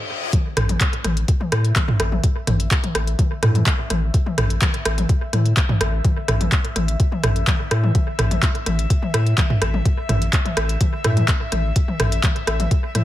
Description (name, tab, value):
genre	minimal techno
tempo	126 BPM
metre	4/4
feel	straight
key	unclear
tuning	A4 = 441 Hz
part	electronic kick drum	drums	0.3-12.8 s	none	-19 LUFS	equal	none
part	minimal click drum kit	drums	0.3-13.0 s	handclaps, hi-hat	-26 LUFS	left 1 dB	low-pass filter on hats, low-pass filter on snare
part	minimal click drum kit	percussion	0.3-13.0 s	rim click, toms	-23 LUFS	equal	tape echo
part	saturated sub bass	bass	0.6-13.0 s	A1 to A2	-20 LUFS	equal	sidechain pumping
part	airy breathy pad	texture	1.5-13.0 s	E5	-32 LUFS	left 2 dB	chorus, sidechain pumping
room	light reverb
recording	none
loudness	-17 LUFS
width	side -14 dB against mid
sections	0.3-13.0 A section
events	stop 0.0-0.3; drop 0.3-13.0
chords	0.3 A5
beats	| 0.33 0.81 1.28 1.76 | 2.24 2.71 3.19 3.66 | 4.14 4.62 5.09 5.57 | 6.04 6.52 7.00 7.47 | 7.95 8.43 8.90 9.38 | 9.86 10.33 10.81 11.28 | 11.76 12.24 12.71